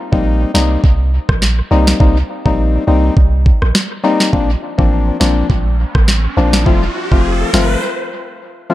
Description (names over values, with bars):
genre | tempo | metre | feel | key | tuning
dancehall | 103 BPM | 4/4 | swing 56% on 16ths | C dorian | A4 = 438 Hz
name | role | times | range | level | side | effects
percussive organ stab | accompaniment | 0.1-8.7 s | F3 to F4 | -17 LUFS | left 4 dB | chorus, dub echo
punchy sub bass | bass | 0.1-7.8 s | F1 to C2 | -14 LUFS | right 1 dB | none
afro-pop drum kit | drums | 0.1-7.7 s | kick drum, rim click, snare drum | -14 LUFS | right 1 dB | dub echo
riser | sound effects | 5.5-7.8 s | none | -23 LUFS | equal | none
room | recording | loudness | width
light reverb, digital ambience | echo-heavy mix | -11 LUFS | side -15 dB against mid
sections
0.0-8.7 A section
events
riser 5.5-8.7; break 7.8-8.7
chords
0.0 Cm7; 4.3 Bbadd9; 6.7 F